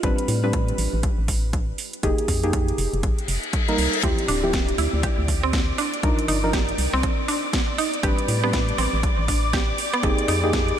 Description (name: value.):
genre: deep house.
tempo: 120 BPM.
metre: 4/4.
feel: swing 61% on 16ths.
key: unclear.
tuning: A4 = 440 Hz.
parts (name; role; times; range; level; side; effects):
deep mellow chord stab; stabs; 0.0-10.8 s; F3 to B4; -26 LUFS; equal; chorus, sidechain pumping, ping-pong delay.
organ-like FM bass; bass; 0.0-10.7 s; D1 to A2; -25 LUFS; equal; tube saturation, sidechain pumping.
electronic kick drum; drums; 0.0-10.7 s; none; -24 LUFS; equal; overdrive.
house drum kit; drums; 0.0-10.8 s; hi-hat, snare drum; -30 LUFS; right 2 dB; none.
reverse cymbal; sound effects; 3.2-4.0 s; none; -29 LUFS; left 5 dB; none.
mallet-like synth pluck; arpeggios; 4.0-10.4 s; B3 to G4; -27 LUFS; right 3 dB; chorus, vintage 12-bit sampler grit, sidechain pumping, diffuse ambient delay.
soft string machine; texture; 4.3-10.8 s; D5 to D6; -30 LUFS; left 1 dB; phaser, ensemble chorus, sidechain pumping.
room: moderate huge ambient reverb, RT60 4.6 s.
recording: dreamy mix soaked in reverb.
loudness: -20 LUFS.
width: side -10 dB against mid.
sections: 0.0-10.8 A section.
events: reverse cymbal 3.2-4.0.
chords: 0.0 Am11; 2.0 Fm11; 4.0 Dm11; 6.0 Cm11; 8.0 Am11; 10.0 Fm11.